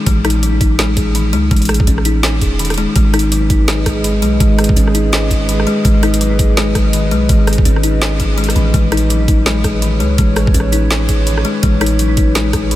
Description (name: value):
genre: half-time drum and bass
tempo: 166 BPM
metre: 4/4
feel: swing 60% on 16ths, half-time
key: unclear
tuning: A4 = 441 Hz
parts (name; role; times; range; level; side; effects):
- kalimba; arpeggios; 0.1-12.8 s; D#3 to G#4; -18 LUFS; left 4 dB; analog delay
- long sustained 808-style bass; bass; 0.1-12.8 s; E1 to C#2; -15 LUFS; equal; none
- drum and bass drum kit; drums; 0.1-12.8 s; hi-hat, rim click, snare drum; -20 LUFS; equal; overdrive
- electronic kick drum; drums; 0.1-12.6 s; none; -15 LUFS; equal; overdrive
- dark analog pad; sustained chords; 3.0-12.8 s; G#3 to D#5; -21 LUFS; right 2 dB; chorus, sidechain pumping
room: light reverb, digital ambience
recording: none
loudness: -11 LUFS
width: side -14 dB against mid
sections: 0.0-12.8 A section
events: kick drops out 2.6-3.0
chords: 0.0 A; 3.0 G#m; 8.7 Aadd9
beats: | 0.07 0.43 0.79 1.15 | 1.51 1.87 2.23 2.60 | 2.96 3.32 3.68 4.04 | 4.40 4.76 5.12 5.49 | 5.85 6.21 6.57 6.93 | 7.29 7.66 8.02 8.38 | 8.74 9.10 9.46 9.82 | 10.19 10.55 10.91 11.27 | 11.63 11.99 12.35 12.71